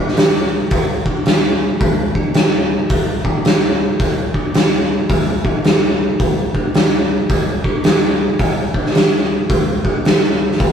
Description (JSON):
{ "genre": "rock", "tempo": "109 BPM", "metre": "4/4", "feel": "swing 63% on 8ths", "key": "none", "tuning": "none", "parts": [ { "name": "oversized low-tuned drum kit", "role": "drums", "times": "0.1-10.7 s", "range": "hi-hat, kick drum, snare drum", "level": "-13 LUFS", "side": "equal", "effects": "none" } ], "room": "little or no reverb", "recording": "rough rehearsal-room recording", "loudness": "-13 LUFS", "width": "side -8 dB against mid", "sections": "0.0-10.7 A section", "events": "none", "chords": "none" }